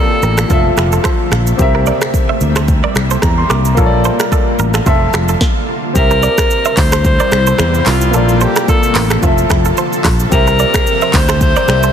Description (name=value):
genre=afrobeats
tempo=110 BPM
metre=4/4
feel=swing 55% on 16ths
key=C mixolydian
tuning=A4 = 441 Hz
part: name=bright alto saxophone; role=melody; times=0.0-0.7, 6.0-11.9 s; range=F4 to C5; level=-17 LUFS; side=left 1 dB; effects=tape echo
part: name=warm grand piano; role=accompaniment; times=0.0-11.9 s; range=F3 to D6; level=-18 LUFS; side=left 3 dB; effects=none
part: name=granular cloud pad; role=sustained chords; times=0.0-11.9 s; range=C3 to E5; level=-20 LUFS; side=right 1 dB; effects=built-in reverb
part: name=direct-recorded clean electric guitar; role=riff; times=0.0-11.9 s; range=C4 to E5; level=-21 LUFS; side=right 10 dB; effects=spring reverb, tape echo
part: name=sustaining fretless electric bass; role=bass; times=0.2-11.9 s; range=F1 to E2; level=-14 LUFS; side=equal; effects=none
part: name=afro-pop drum kit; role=drums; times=0.2-11.9 s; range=finger snaps, handclaps, hi-hat, kick drum, rim click, shaker, snare drum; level=-15 LUFS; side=equal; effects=soft clipping on snare
room=digital ambience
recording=dense, heavily limited modern master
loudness=-10 LUFS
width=side -8 dB against mid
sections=0.0-6.0 A section; 6.0-11.9 B section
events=stop 5.4-6.0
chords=0.0 Bbmaj7; 0.5 Fmaj7; 1.6 C7; 3.8 Bbmaj7; 4.9 Fmaj7; 6.0 C7; 8.1 Bbmaj7; 9.2 Fmaj7; 10.3 C7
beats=0.50 1.05 | 1.59 2.14 2.68 3.23 | 3.77 4.32 4.86 5.41 | 5.96 6.50 7.05 7.59 | 8.14 8.68 9.23 9.77 | 10.32 10.86 11.41